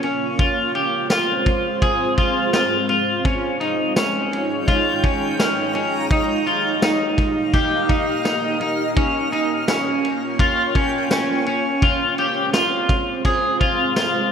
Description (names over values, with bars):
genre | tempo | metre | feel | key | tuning
dream pop | 84 BPM | 4/4 | straight | unclear | A4 = 441 Hz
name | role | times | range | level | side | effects
granular cloud pad | sustained chords | 0.0-14.3 s | Ab3 to Eb5 | -24 LUFS | right 1 dB | built-in reverb
electric guitar at the edge of break-up | arpeggios | 0.0-14.3 s | Db4 to Ab4 | -20 LUFS | left 1 dB | lush chorus, digital delay
vintage drum kit | drums | 0.0-14.1 s | kick drum, ride cymbal, snare drum, tambourine | -22 LUFS | equal | gated reverb
backwards swelling texture | texture | 4.3-11.3 s | F5 to Bb5 | -32 LUFS | right 1 dB | built-in reverb, lush chorus, digital delay
room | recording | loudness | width
moderate plate reverb, RT60 3.0 s | bright 1980s-style digital production | -17 LUFS | side -7 dB against mid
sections
0.0-14.3 A section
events
none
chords
0.4 Fm; 3.3 Dbadd9; 6.1 Eb; 9.0 Bbm; 11.8 Fm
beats
| 0.39 1.11 1.82 2.54 | 3.25 3.97 4.68 5.39 | 6.11 6.82 7.54 8.25 | 8.97 9.68 10.39 11.11 | 11.82 12.54 13.25 13.97